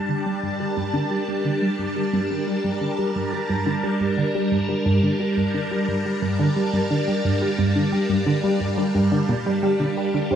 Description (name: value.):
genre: ambient, sequencer-driven space music.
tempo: 88 BPM.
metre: 4/4.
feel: straight.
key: G minor.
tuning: A4 = 443 Hz.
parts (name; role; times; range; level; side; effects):
phased string machine; sustained chords; 0.0-10.4 s; G3 to A5; -23 LUFS; equal; ensemble chorus, phaser.
bubbling stepped-filter texture; texture; 0.1-10.4 s; D4 to F5; -40 LUFS; equal; none.
tight sequenced synth; riff; 0.1-10.4 s; G2 to G3; -23 LUFS; equal; chorus, phaser, tape echo.
expressive synth lead; melody; 10.3-10.4 s; C5; -20 LUFS; left 3 dB; analog chorus.
room: moderate plate reverb, RT60 3.6 s.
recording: studio ambience.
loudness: -20 LUFS.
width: side -9 dB against mid.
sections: 0.0-10.4 A section.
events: none.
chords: 0.0 Gm.